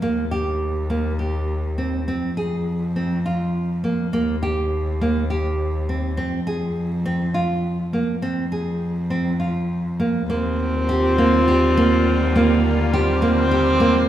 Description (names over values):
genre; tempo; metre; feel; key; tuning
contemporary instrumental, chamber music in an uneven meter; 205 BPM (eighths); 7/8; straight; unclear; A4 = 440 Hz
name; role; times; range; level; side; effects
nylon-string guitar; arpeggios; 0.0-14.1 s; Bb3 to Ab4; -22 LUFS; right 2 dB; none
warm cello; bass; 0.0-14.1 s; Eb2 to F2; -23 LUFS; left 1 dB; none
warm viola; second line; 10.3-14.1 s; Bb3 to C4; -20 LUFS; equal; none
evolving wavetable pad; sustained chords; 10.7-14.1 s; D3 to F4; -25 LUFS; left 1 dB; phaser, built-in reverb
room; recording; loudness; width
wet recital hall reverb, RT60 1.4 s; heard from further back in the room; -19 LUFS; side -12 dB against mid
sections
0.0-10.3 A section; 10.3-14.1 B section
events
none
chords
0.0 Eb; 2.1 Fm; 4.1 Eb; 6.2 Fm; 10.3 Ebmaj9